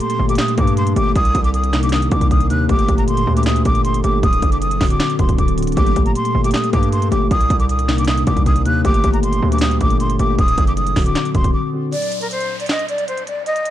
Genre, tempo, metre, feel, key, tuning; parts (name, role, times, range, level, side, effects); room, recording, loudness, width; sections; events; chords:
hip hop, trap; 156 BPM; 4/4; half-time; G harmonic minor; A4 = 440 Hz
breathy jazz flute; melody; 0.0-13.7 s; Bb4 to F#6; -21 LUFS; equal; low-pass filter, tape echo
mellow tine electric piano; accompaniment; 0.0-11.9 s; C3 to G4; -21 LUFS; left 3 dB; slow stereo tremolo, low-pass filter
glassy FM pad; sustained chords; 0.0-11.9 s; Bb2 to Bb4; -25 LUFS; equal; ensemble chorus, built-in reverb
trap drum kit; drums; 0.0-13.7 s; handclaps, hi-hat, kick drum, snare drum; -19 LUFS; right 1 dB; vintage 12-bit sampler grit
distorted 808-style bass; bass; 0.2-11.5 s; D1 to G2; -19 LUFS; right 1 dB; distortion
downlifter; sound effects; 11.9-13.7 s; -29 LUFS; equal
digital ambience; -14 LUFS; side -12 dB against mid
0.0-11.9 A section; 11.9-13.7 B section
break 11.5-11.9, 11.9-13.7
0.0 Gmadd9; 1.2 Cm7; 2.7 Gmadd9; 4.2 D7; 5.8 Gmadd9; 7.3 Cm7; 8.8 Gmadd9; 10.4 D7; 11.9 N.C.